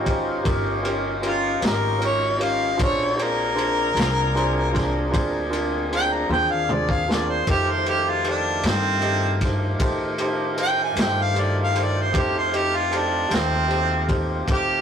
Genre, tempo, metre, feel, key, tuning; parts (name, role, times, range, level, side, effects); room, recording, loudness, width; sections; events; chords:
slow blues; 51 BPM (dotted quarters); 12/8; straight; A4 = 440 Hz
warm grand piano; accompaniment; 0.0-14.8 s; Db4 to Eb5; -27 LUFS; right 2 dB
tonewheel organ; sustained chords; 0.0-14.8 s; Eb3 to A4; -28 LUFS; left 1 dB; overdrive, slow rotary speaker
upright bass; bass; 0.0-14.8 s; G1 to A2; -28 LUFS; equal
crunchy breakbeat drum kit; drums; 0.1-14.7 s; kick drum, ride cymbal, snare drum, toms; -27 LUFS; equal
mellow harmonica; melody; 1.3-14.8 s; C4 to Bb5; -22 LUFS; equal
moderate stone room reverb, RT60 1.0 s; rough rehearsal-room recording, warm saturation; -19 LUFS; side -8 dB against mid
0.0-14.8 A section
harmonica solo 0.0-14.8; drum fill 6.3-7.5
0.0 Eb9; 2.8 Bb9; 7.5 F9